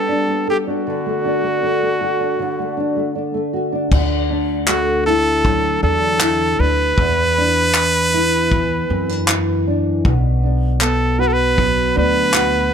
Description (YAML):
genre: acoustic pop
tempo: 78 BPM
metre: 4/4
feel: straight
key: unclear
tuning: A4 = 440 Hz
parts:
  - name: bright trumpet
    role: melody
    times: 0.0-12.7 s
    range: F#4 to B4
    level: -18 LUFS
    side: right 2 dB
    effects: none
  - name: nylon-string guitar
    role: accompaniment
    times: 0.0-12.7 s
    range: E2 to A4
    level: -20 LUFS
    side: left 1 dB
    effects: double-tracked left and right
  - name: upright bass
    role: bass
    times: 3.9-12.7 s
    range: B1 to F#2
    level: -20 LUFS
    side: equal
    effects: none
  - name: unplugged drum kit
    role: drums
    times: 3.9-12.5 s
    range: crash cymbal, handclaps, kick drum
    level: -19 LUFS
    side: equal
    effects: none
room: studio ambience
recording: none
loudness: -15 LUFS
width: side -7 dB against mid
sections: 0.0-3.9 A section; 3.9-12.7 B section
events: none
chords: 0.0 Gadd9; 0.9 D; 3.9 Dadd9; 7.0 E5; 10.0 Bm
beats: 0.09 | 0.85 1.62 2.39 3.15 | 3.92 4.68 5.45 6.21 | 6.98 7.75 8.51 9.28 | 10.04 10.81 11.58 12.34